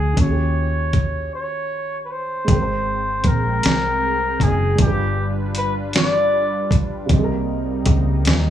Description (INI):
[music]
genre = slow six-eight R&B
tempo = 52 BPM (dotted quarters)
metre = 6/8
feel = straight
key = Ab major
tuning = A4 = 440 Hz
[part]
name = warm flugelhorn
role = melody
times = 0.0-6.8 s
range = G4 to D5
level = -22 LUFS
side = left 1 dB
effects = tape echo
[part]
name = dark baby grand piano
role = accompaniment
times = 0.0-8.5 s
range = C3 to G5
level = -28 LUFS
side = right 4 dB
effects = none
[part]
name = deep dub fingered electric bass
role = bass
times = 0.0-8.5 s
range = Gb1 to Eb2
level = -21 LUFS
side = equal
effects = none
[part]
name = dusty soul sampler-style drum kit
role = drums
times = 0.2-8.4 s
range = hi-hat, kick drum, snare drum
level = -18 LUFS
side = equal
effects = none
[part]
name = warm analog pad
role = sustained chords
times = 2.5-8.5 s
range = C3 to G5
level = -28 LUFS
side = right 1 dB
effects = chorus
[sound]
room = digital ambience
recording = dry, gritty hardware recording, small room ambience, faint mains hum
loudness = -17 LUFS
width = side -10 dB against mid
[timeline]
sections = 0.0-2.5 A section; 2.5-8.5 B section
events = break 1.3-2.5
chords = 0.2 Eb9; 2.5 Abmaj9; 4.8 G7; 7.1 Cm7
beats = | 0.17 1.33 | 2.48 3.63 | 4.79 5.94 | 7.10 8.25